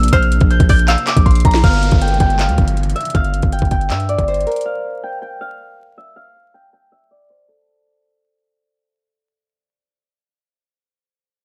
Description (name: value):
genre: hip hop, trap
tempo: 159 BPM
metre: 4/4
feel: half-time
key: unclear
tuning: A4 = 440 Hz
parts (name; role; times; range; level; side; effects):
- Celtic harp; melody; 0.0-9.7 s; A4 to G6; -22 LUFS; equal; low-pass filter, tape echo
- dark studio string section; sustained chords; 0.0-1.6 s; C3 to D4; -29 LUFS; equal; none
- distorted 808-style bass; bass; 0.0-4.5 s; G1 to G2; -18 LUFS; equal; distortion
- trap drum kit; drums; 0.0-4.7 s; crash cymbal, handclaps, hi-hat, kick drum, snare drum; -18 LUFS; equal; none
- string-like resonator pluck; second line; 0.1-1.6 s; C5 to F5; -26 LUFS; equal; chorus, phaser, tape echo
- downlifter; sound effects; 1.6-4.7 s; none; -30 LUFS; equal; none
room: digital ambience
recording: vinyl crackle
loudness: -15 LUFS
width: mono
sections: 0.0-1.6 A section; 1.6-7.7 B section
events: drum fill 1.3-1.6; fade-out 1.6-7.7; filter sweep on harp 1.6-7.7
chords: 0.0 Bbadd9; 1.6 G5; 4.7 N.C.